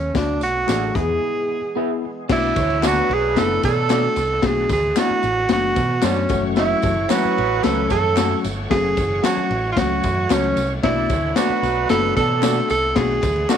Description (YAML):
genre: uptempo 1960s-style soul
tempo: 112 BPM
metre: 4/4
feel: straight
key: unclear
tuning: A4 = 440 Hz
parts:
  - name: breathy tenor saxophone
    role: melody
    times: 0.0-13.6 s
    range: C#4 to A4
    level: -20 LUFS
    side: right 2 dB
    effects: none
  - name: bright tonewheel organ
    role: sustained chords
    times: 0.0-13.6 s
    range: E3 to C#6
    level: -35 LUFS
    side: right 2 dB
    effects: fast rotary speaker, overdrive, chorus vibrato
  - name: deep dub picked electric bass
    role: bass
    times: 0.0-13.4 s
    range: F#1 to B2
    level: -25 LUFS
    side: right 1 dB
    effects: none
  - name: tine electric piano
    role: accompaniment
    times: 0.1-13.6 s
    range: F#3 to A4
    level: -25 LUFS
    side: left 9 dB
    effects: auto-pan
  - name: raw garage drum kit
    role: drums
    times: 0.1-13.6 s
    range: crash cymbal, hi-hat, kick drum, ride cymbal, snare drum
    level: -24 LUFS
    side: left 4 dB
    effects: none
  - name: tambourine and handclaps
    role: percussion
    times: 0.2-13.6 s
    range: none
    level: -34 LUFS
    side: equal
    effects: none
  - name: electric guitar through a small old amp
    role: stabs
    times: 0.7-13.6 s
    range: F#4 to E5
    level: -29 LUFS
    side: right 14 dB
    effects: none
  - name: mellow horn section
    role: second line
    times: 2.3-12.7 s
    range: F#3 to E5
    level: -25 LUFS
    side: right 15 dB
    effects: none
room: light reverb, small room ambience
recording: 1960s-style stereo with parts hard left and right, vinyl crackle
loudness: -17 LUFS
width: side -8 dB against mid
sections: 0.0-2.3 A section; 2.3-13.6 B section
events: break 1.2-2.3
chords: 0.2 D; 1.0 E; 2.3 Bm7; 6.3 F#m; 10.8 Bm7